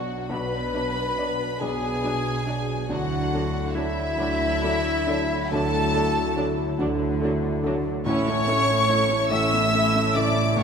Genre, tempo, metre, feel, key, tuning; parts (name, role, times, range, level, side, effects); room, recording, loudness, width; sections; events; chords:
cinematic, emotional film score for orchestra; 47 BPM (dotted quarters); 6/8; rubato; A4 = 440 Hz
warm studio violin section; melody; 0.0-10.6 s; E5 to E6; -30 LUFS; left 1 dB
bright concert flute; second line; 0.0-10.6 s; E5 to E6; -29 LUFS; left 1 dB
dark studio violin section; second line; 0.0-10.6 s; E4 to E5; -31 LUFS; left 2 dB
warm clarinet; second line; 0.0-10.6 s; E4 to E5; -30 LUFS; left 1 dB
felt-muted upright piano; accompaniment; 0.0-10.6 s; A1 to D5; -30 LUFS; left 1 dB
warm French horn section; sustained chords; 0.0-10.6 s; F#3 to E4; -30 LUFS; left 5 dB
rich studio double bass section; bass; 0.0-10.6 s; A1 to D2; -30 LUFS; right 4 dB
warm studio cello section; bass; 0.0-10.6 s; A2 to D3; -30 LUFS; right 3 dB
warm studio viola section; accompaniment; 0.3-10.6 s; F#3 to E4; -33 LUFS; right 2 dB
wet concert hall reverb, RT60 2.4 s; -21 LUFS; side -6 dB against mid
0.0-10.6 A section
0.0 Bm; 2.9 Dadd9; 8.1 A